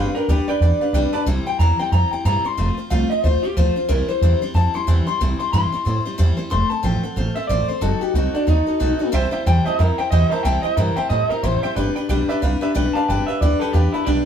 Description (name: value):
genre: rockabilly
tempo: 183 BPM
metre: 4/4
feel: swing 59% on 8ths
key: C major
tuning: A4 = 441 Hz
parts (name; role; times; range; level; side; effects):
- electric guitar through a small old amp; melody; 0.0-14.2 s; D4 to C6; -22 LUFS; left 1 dB; none
- picked steel-string acoustic guitar; accompaniment; 0.0-14.3 s; C3 to C5; -24 LUFS; left 3 dB; none
- warm upright piano; accompaniment; 0.0-1.2, 9.1-14.2 s; B4 to A5; -27 LUFS; right 4 dB; none
- upright bass; bass; 0.0-14.2 s; F1 to A2; -19 LUFS; right 1 dB; none
room: moderate studio reverb, RT60 0.7 s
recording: band playing live in one room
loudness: -17 LUFS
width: side -8 dB against mid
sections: 0.0-1.3 A section; 1.3-14.3 B section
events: clean electric guitar solo 1.3-14.3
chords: 0.0 G; 1.3 C; 2.6 F; 3.9 C; 6.5 F; 7.8 F#dim7; 9.1 C; 11.8 G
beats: 0.29 0.61 0.94 | 1.27 1.59 1.92 2.25 | 2.58 2.90 3.23 3.56 | 3.89 4.21 4.54 4.87 | 5.20 5.53 5.85 6.18 | 6.51 6.84 7.17 7.49 | 7.82 8.15 8.48 8.81 | 9.14 9.46 9.79 10.12 | 10.45 10.78 11.11 11.44 | 11.77 12.10 12.42 12.75 | 13.08 13.41 13.74 14.07